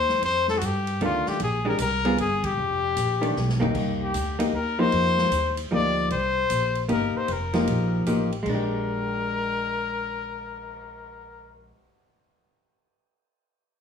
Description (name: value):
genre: jazz, small-group swing and bop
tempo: 153 BPM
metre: 3/4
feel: swing 66% on 8ths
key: Bb major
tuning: A4 = 440 Hz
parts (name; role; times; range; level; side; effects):
- clear trumpet; melody; 0.0-11.6 s; F4 to D5; -26 LUFS; left 4 dB; none
- upright bass; bass; 0.0-11.7 s; F1 to G2; -30 LUFS; equal; none
- swinging big-band drum kit; drums; 0.1-10.7 s; crash cymbal, cymbal swell, hi-hat, kick drum, ride cymbal, snare drum, toms; -36 LUFS; equal; none
- vintage hollow-body jazz guitar; accompaniment; 1.0-11.8 s; Eb3 to Ab4; -26 LUFS; left 1 dB; none
room: wet small room reverb, RT60 0.5 s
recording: studio reverb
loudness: -22 LUFS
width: side -7 dB against mid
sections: 0.0-3.7 A section; 3.7-8.5 B section; 8.5-10.8 C section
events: band accent 2.4; drum fill 3.4-3.7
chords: 0.2 F13; 1.4 Bb13; 2.2 N.C.; 2.6 F7sus2; 3.7 Cm7; 4.9 F9sus4; 6.1 Cm7; 7.3 F9sus4; 8.5 Bb6